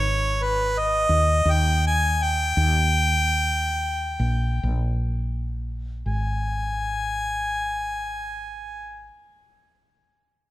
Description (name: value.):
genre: folk.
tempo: 59-87 BPM.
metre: 4/4.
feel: straight.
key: unclear.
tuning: A4 = 440 Hz.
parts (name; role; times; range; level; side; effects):
clear harmonica; melody; 0.0-9.1 s; B4 to G#5; -23 LUFS; equal; slapback echo.
woody fretless electric bass; bass; 0.0-9.1 s; G#1 to D#2; -24 LUFS; equal; none.
room: light reverb.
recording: none.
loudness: -21 LUFS.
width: side -15 dB against mid.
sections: 0.0-6.1 A section; 6.1-10.1 B section.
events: slowing down 0.0-6.1.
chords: 0.0 G#5; 2.6 D#; 6.1 N.C..